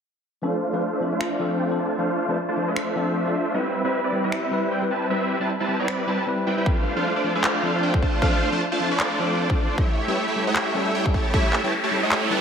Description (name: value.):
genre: future bass.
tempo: 154 BPM.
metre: 4/4.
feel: swing 56% on 16ths, half-time.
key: D dorian.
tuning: A4 = 437 Hz.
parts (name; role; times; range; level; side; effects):
bright tine electric piano; accompaniment; 0.4-12.4 s; F3 to C5; -28 LUFS; left 2 dB; analog chorus, sidechain pumping, ping-pong delay.
supersaw chords; riff; 0.4-12.4 s; G3 to A5; -23 LUFS; right 1 dB; analog chorus, sidechain pumping, low-pass filter, ping-pong delay.
electronic finger snaps and handclaps; drums; 1.2-12.2 s; none; -28 LUFS; equal; none.
electronic kick drum; drums; 6.7-11.4 s; none; -22 LUFS; equal; none.
riser; sound effects; 11.2-12.4 s; none; -30 LUFS; equal; none.
room: wet plate reverb, RT60 2.3 s.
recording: dreamy mix soaked in reverb.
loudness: -21 LUFS.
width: side -7 dB against mid.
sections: 0.4-12.4 A section.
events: filter sweep on supersaw synth 0.4-12.4; riser 11.2-12.4.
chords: 0.4 Dm7; 3.5 Cmaj7; 6.7 F6; 9.8 A7.